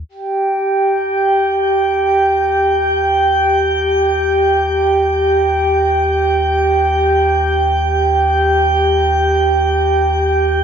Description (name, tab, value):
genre	ambient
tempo	free time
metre	none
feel	none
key	unclear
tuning	A4 = 441 Hz
part	warm sub bass	bass	0.0-10.6 s	Eb2	-22 LUFS	left 1 dB	none
part	glass harmonica	texture	0.1-10.6 s	G4 to G5	-13 LUFS	right 1 dB	none
room	wet shimmer reverb, RT60 6.8 s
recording	cassette tape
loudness	-12 LUFS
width	side -7 dB against mid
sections	0.1-10.6 A section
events	fade-in on sub bass 0.1-10.6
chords	0.1 Eb